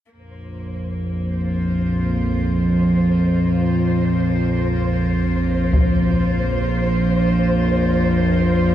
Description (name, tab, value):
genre	dark ambient drone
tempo	free time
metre	none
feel	none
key	unclear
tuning	A4 = 440 Hz
part	rich chamber cello section	sustained chords	0.1-8.7 s	Bb3 to C5	-29 LUFS	left 1 dB	none
part	analog drone	drone	0.5-8.7 s	Bb1 to F2	-17 LUFS	equal	chorus
part	flickering grainy texture	texture	0.5-8.7 s	C5	-29 LUFS	equal	built-in reverb
part	solo taiko drums	percussion	5.7-5.9 s	none	-21 LUFS	equal	low-pass filter on perc, analog delay
room	wet echo chamber reverb, RT60 2.5 s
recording	echo-heavy mix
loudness	-16 LUFS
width	side -11 dB against mid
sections	0.1-8.7 A section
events	fade-in on cello section 0.1-8.7; fade-in on synth texture 0.1-8.7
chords	0.1 Bbsus2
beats	free time